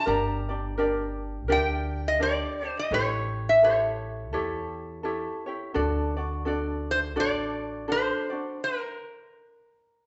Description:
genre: Hawaiian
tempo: 84 BPM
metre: 4/4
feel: swing 60% on 8ths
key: unclear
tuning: A4 = 440 Hz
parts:
  - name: metal-body resonator slide guitar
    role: melody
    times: 0.0-10.1 s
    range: Bb4 to Bb5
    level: -28 LUFS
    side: equal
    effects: none
  - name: ukulele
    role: accompaniment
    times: 0.0-8.6 s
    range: D4 to D5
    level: -32 LUFS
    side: equal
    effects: none
  - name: upright bass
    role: bass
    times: 0.1-8.1 s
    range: G1 to E2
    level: -36 LUFS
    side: equal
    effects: none
room: wet large studio reverb, RT60 1.3 s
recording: band playing live in one room, nothing above 8.0 kHz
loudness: -27 LUFS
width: mono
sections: 0.0-10.1 A section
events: stop 8.6-10.1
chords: 0.1 Gm; 2.9 A7; 5.8 D; 8.6 N.C.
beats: | 0.07 0.78 1.49 2.20 | 2.92 3.63 4.34 5.05 | 5.76 6.47 7.18 7.89 | 8.60 9.31 10.03

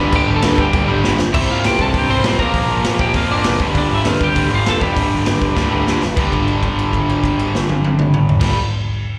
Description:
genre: punk rock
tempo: 198 BPM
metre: 4/4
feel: straight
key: unclear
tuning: A4 = 442 Hz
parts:
  - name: lightly driven lead guitar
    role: melody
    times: 0.0-5.9 s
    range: D4 to C6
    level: -23 LUFS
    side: equal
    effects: slapback echo
  - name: cranked stack guitar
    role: riff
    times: 0.0-8.6 s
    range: G2 to C4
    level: -21 LUFS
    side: equal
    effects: overdrive, slapback echo
  - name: fuzz picked electric bass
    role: bass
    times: 0.0-8.5 s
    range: F1 to A2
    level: -23 LUFS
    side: equal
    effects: overdrive
  - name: raw garage drum kit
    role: drums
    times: 0.1-8.5 s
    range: crash cymbal, hi-hat, kick drum, snare drum, toms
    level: -21 LUFS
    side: equal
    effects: none
room: small room ambience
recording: live gig heard through the venue's PA, recital hall reverb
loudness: -16 LUFS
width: mono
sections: 0.0-1.3 A section; 1.3-6.2 B section; 6.2-8.6 C section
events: drum fill 1.0-1.3, 5.6-6.2; held note 6.2-8.4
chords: 0.0 G; 1.3 C; 2.4 Bb; 3.6 G5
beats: | 0.14 0.44 0.74 1.04 | 1.35 1.65 1.95 2.25 | 2.55 2.85 3.16 3.46 | 3.76 4.06 4.37 4.67 | 4.97 5.27 5.58 5.88 | 6.18 6.48 6.79 7.09 | 7.39 7.69 7.99 8.30

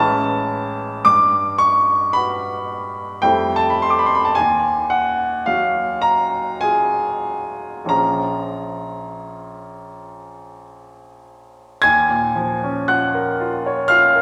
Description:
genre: classical, impressionist solo piano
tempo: 44-60 BPM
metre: 3/4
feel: rubato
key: Eb minor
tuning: A4 = 440 Hz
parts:
  - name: clear baby grand piano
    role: solo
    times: 0.0-14.2 s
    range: A1 to Ab6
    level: -18 LUFS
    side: equal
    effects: none
room: wet concert hall reverb, RT60 2.1 s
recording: recorded in a church or concert hall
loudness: -18 LUFS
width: mono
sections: 0.0-11.8 A section; 11.8-14.2 B section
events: none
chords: 0.0 Amaj9; 1.1 Gmaj7; 3.2 Fmaj9; 4.4 Ebmadd9; 7.9 Bbm7; 11.8 Ebm9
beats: | 1.05 2.15 3.24 | 4.36 5.47 6.63 | 7.91 9.25 10.56 | 11.83 12.88 13.90

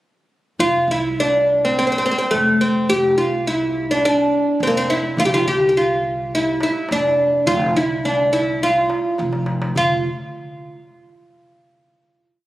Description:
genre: Arabic maqam ensemble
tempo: 105 BPM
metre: 4/4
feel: straight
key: unclear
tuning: A4 = 435 Hz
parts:
  - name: oud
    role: melody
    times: 0.6-10.0 s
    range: A3 to G4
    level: -16 LUFS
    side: equal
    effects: none
  - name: upright bass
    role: bass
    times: 0.6-10.0 s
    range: F1 to C2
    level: -28 LUFS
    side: equal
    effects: none
  - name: darbuka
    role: percussion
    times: 5.2-10.0 s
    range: none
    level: -31 LUFS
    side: right 1 dB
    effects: none
room: moderate concert hall reverb, RT60 2.2 s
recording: recorded on a phone in the room, club reverb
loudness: -16 LUFS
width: side -16 dB against mid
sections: 0.6-9.8 A section; 9.8-12.1 final note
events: drum fill 9.2-9.8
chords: none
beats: | 0.60 1.17 1.74 2.31 | 2.88 3.46 4.03 4.60 | 5.17 5.75 6.32 6.89 | 7.47 8.04 8.62 9.19 | 9.76

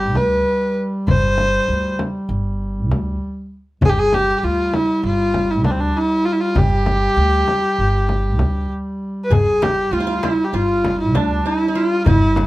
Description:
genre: Turkish makam ensemble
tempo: 196 BPM (eighths)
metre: 9/8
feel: straight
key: G makam hicaz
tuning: A4 = 438 Hz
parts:
  - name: clear kamancheh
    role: melody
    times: 0.0-12.5 s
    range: C4 to C5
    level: -18 LUFS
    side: equal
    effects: none
  - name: upright bass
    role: bass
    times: 0.0-12.5 s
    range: G1 to D2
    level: -21 LUFS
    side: equal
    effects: none
  - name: mellow duduk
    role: drone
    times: 0.0-12.5 s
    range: G3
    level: -25 LUFS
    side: equal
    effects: none
  - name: frame drum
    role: percussion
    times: 0.2-12.5 s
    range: none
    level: -20 LUFS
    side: left 1 dB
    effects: none
  - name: qanun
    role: second line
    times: 9.3-12.5 s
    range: D4 to Ab4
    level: -24 LUFS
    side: right 2 dB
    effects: none
  - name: darbuka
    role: percussion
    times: 9.3-12.5 s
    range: none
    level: -21 LUFS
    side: left 2 dB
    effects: none
room: moderate studio ambience, RT60 0.5 s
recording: none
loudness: -16 LUFS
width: side -17 dB against mid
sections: 0.0-9.3 A section; 9.3-12.5 A section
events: none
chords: none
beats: 0.15 0.45 0.76 | 1.06 1.37 1.67 1.98 2.28 2.59 2.90 3.20 3.51 | 3.81 4.12 4.42 4.73 5.03 5.34 5.64 5.95 6.26 | 6.56 6.87 7.17 7.48 7.79 8.09 8.40 8.70 9.01 | 9.31 9.62 9.92 10.23 10.54 10.84 11.15 11.45 11.76 | 12.06 12.37

